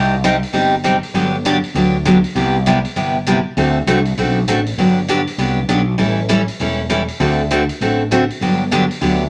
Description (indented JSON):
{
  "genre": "country, western swing",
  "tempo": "198 BPM",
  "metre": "4/4",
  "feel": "swing 62% on 8ths",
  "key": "G major",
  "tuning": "A4 = 438 Hz",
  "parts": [
    { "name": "picked steel-string acoustic guitar", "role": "accompaniment", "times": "0.0-9.2 s", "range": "C3 to A4", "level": "-18 LUFS", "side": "equal", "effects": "none" },
    { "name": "fretless electric bass", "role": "bass", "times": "0.0-9.3 s", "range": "E1 to D2", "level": "-23 LUFS", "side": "equal", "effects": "none" },
    { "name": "hi-hat", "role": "drums", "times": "0.2-9.1 s", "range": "none", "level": "-32 LUFS", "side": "equal", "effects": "none" }
  ],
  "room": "moderate studio reverb, RT60 0.8 s",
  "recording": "none",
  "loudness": "-16 LUFS",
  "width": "mono",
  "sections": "0.0-9.3 A section",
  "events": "none",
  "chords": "0.0 Cm; 1.1 Gmaj7; 2.4 Cmaj7; 3.6 D7; 4.8 Gmaj7; 6.0 A7; 7.2 D7; 8.4 Gmaj7"
}